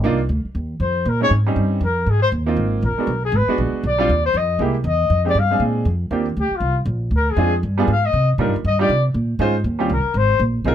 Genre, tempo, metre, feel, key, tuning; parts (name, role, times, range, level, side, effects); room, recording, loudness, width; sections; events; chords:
jazz, small-group swing and bop; 237 BPM; 4/4; swing 59% on 8ths; Eb major; A4 = 441 Hz
clear baby grand piano; accompaniment; 0.0-10.7 s; G3 to C5; -21 LUFS; right 3 dB
upright bass; bass; 0.0-10.7 s; Ab1 to C3; -19 LUFS; equal
warm trumpet; melody; 0.8-10.4 s; F4 to F5; -20 LUFS; left 4 dB
little or no reverb; close, detailed microphones; -17 LUFS; side -10 dB against mid
0.0-6.1 A section; 6.1-10.7 B section
trumpet solo 6.1-10.7
0.1 Cm11; 1.1 Bbm11; 1.6 Eb13; 2.1 Ab69; 3.1 Abm9b5; 4.1 Ebsus2; 4.6 C7b13; 5.1 Fm7; 5.6 Bb7; 6.1 Ebmaj13; 7.1 Dm7b5; 7.6 G7b9; 8.1 Cm11; 9.1 Bbm11; 9.7 Eb13; 10.2 Ab69